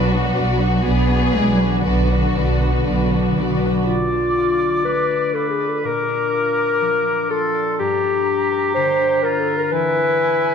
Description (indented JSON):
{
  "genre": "cinematic, heroic adventure film score",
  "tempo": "123 BPM",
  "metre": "4/4",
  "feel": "straight",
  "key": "unclear",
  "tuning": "A4 = 440 Hz",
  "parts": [
    { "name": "warm symphonic violin section", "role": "melody", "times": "0.0-3.6 s", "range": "F#4 to G#4", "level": "-25 LUFS", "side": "left 3 dB", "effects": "none" },
    { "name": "dark symphonic violin section", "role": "second line", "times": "0.0-3.9 s", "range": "F#4 to D5", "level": "-27 LUFS", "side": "left 2 dB", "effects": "none" },
    { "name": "warm symphonic viola section", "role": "accompaniment", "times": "0.0-3.9 s", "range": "B3 to D4", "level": "-27 LUFS", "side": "right 3 dB", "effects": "none" },
    { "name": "concert harp", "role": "arpeggios", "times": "0.0-10.5 s", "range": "G2 to D5", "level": "-26 LUFS", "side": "left 7 dB", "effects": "none" },
    { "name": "rich studio double bass section", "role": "bass", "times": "0.0-3.8 s", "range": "B1", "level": "-20 LUFS", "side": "right 2 dB", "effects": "none" },
    { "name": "warm chamber cello section", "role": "bass", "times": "0.0-3.6 s", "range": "D3 to B3", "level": "-22 LUFS", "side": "right 1 dB", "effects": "none" },
    { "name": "mellow clarinet", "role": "second line", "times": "3.4-10.5 s", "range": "F4 to C5", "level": "-19 LUFS", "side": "left 2 dB", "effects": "none" },
    { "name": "bright concert flute", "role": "second line", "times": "3.9-10.5 s", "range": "G#5 to D6", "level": "-26 LUFS", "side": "left 1 dB", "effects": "none" },
    { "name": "clear oboe", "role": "second line", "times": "3.9-10.5 s", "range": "E4 to D5", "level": "-24 LUFS", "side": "right 1 dB", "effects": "none" }
  ],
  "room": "moderate scoring stage reverb, RT60 1.9 s",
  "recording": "dark, warm production",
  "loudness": "-16 LUFS",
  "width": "side -6 dB against mid",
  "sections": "0.0-3.9 A section; 3.9-10.5 B section",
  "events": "none",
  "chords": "0.0 Bm; 3.9 Dm; 5.9 A#; 7.8 Gm; 9.7 E"
}